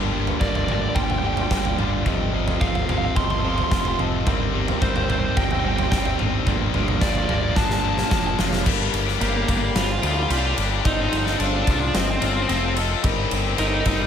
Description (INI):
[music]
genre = post-rock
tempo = 109 BPM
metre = 4/4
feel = straight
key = G minor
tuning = A4 = 440 Hz
[part]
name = twangy electric guitar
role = arpeggios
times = 0.0-14.1 s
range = G2 to Eb5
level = -34 LUFS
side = left 2 dB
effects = none
[part]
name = vibraphone with medium mallets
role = arpeggios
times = 0.0-14.1 s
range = Bb4 to F5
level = -36 LUFS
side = right 2 dB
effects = analog delay
[part]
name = distorted electric guitar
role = riff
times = 0.0-14.1 s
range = F2 to A4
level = -26 LUFS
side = left 13 dB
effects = overdrive
[part]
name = sludgy distorted guitar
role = riff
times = 0.0-8.7 s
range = Bb2 to A4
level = -28 LUFS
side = right 11 dB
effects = overdrive
[part]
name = growling picked electric bass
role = bass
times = 0.0-14.1 s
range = F1 to D2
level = -26 LUFS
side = equal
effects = overdrive
[part]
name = big rock drum kit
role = drums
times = 0.3-14.0 s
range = crash cymbal, kick drum, ride cymbal, snare drum, toms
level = -24 LUFS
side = equal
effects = none
[part]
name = crunchy overdriven guitar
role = melody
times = 0.4-14.1 s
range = Bb3 to C6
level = -27 LUFS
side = right 1 dB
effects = analog delay
[sound]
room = light reverb, small room ambience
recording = none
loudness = -19 LUFS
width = side -8 dB against mid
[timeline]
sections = 0.0-8.7 A section; 8.7-14.1 B section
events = build-up 0.0-8.7; drum fill 7.6-8.7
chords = 0.0 Gm7; 2.1 F7/G; 4.3 Cm7/G; 6.5 Bbmaj7/G; 8.7 Gm7; 10.9 F7/G; 13.0 Cm7/G